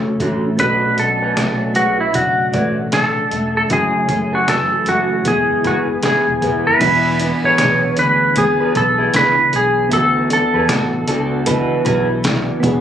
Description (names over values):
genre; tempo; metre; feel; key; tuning
indie pop, bedroom pop; 77 BPM; 4/4; swing 60% on 16ths; unclear; A4 = 437 Hz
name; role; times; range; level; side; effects
clean lap steel guitar; melody; 0.0-12.6 s; E4 to C#5; -16 LUFS; equal; wide subtle chorus
electric guitar through a small old amp; second line; 0.0-12.1 s; B3 to G#5; -23 LUFS; right 2 dB; wide subtle chorus, analog delay
nylon-string guitar; accompaniment; 0.0-12.8 s; F#2 to G#4; -22 LUFS; left 3 dB; wide subtle chorus, vibrato effect
soft electric-piano-like synth keys; accompaniment; 0.0-12.8 s; G#3 to G#5; -24 LUFS; right 2 dB; chorus, tremolo
vintage muted fingered electric bass; bass; 0.0-12.8 s; E1 to E2; -25 LUFS; right 1 dB; none
trip hop sampler-style drum kit; drums; 0.2-12.8 s; crash cymbal, hi-hat, kick drum, snare drum; -22 LUFS; equal; none
room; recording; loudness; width
light reverb; recorded on a phone in the room, club reverb; -13 LUFS; side -9 dB against mid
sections
0.0-6.8 A section; 6.8-12.8 B section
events
none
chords
0.0 F#m7; 0.6 Bm7; 3.7 F#m7; 5.3 E; 6.8 E7; 9.9 D69